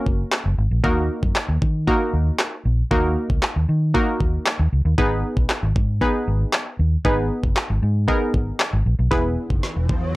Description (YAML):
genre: dance-pop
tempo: 116 BPM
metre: 4/4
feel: straight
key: G# minor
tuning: A4 = 440 Hz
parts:
  - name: glassy wavetable pluck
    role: accompaniment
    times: 0.0-9.8 s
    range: A#3 to B4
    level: -23 LUFS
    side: equal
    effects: chorus
  - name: vintage muted fingered electric bass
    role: bass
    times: 0.1-10.1 s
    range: E1 to D#3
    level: -20 LUFS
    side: equal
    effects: tube saturation, sidechain pumping
  - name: smooth R&B drum kit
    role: drums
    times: 0.1-10.0 s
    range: handclaps, kick drum, snare drum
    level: -22 LUFS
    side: equal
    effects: none
  - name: riser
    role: sound effects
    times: 9.4-10.2 s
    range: none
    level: -31 LUFS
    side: equal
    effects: none
room: little or no reverb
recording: dry, gritty hardware recording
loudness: -18 LUFS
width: side -20 dB against mid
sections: 0.0-9.1 A section; 9.1-10.2 B section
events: build-up 9.1-10.2; drum fill 9.1-10.2; filter sweep 9.1-10.2; riser 9.4-10.2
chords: 0.0 F#; 0.8 D#m; 5.0 G#m; 9.1 E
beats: 0.33 | 0.84 1.36 1.88 2.39 | 2.91 3.43 3.95 4.46 | 4.98 5.50 6.01 6.53 | 7.05 7.57 8.08 8.60 | 9.12 9.64 10.15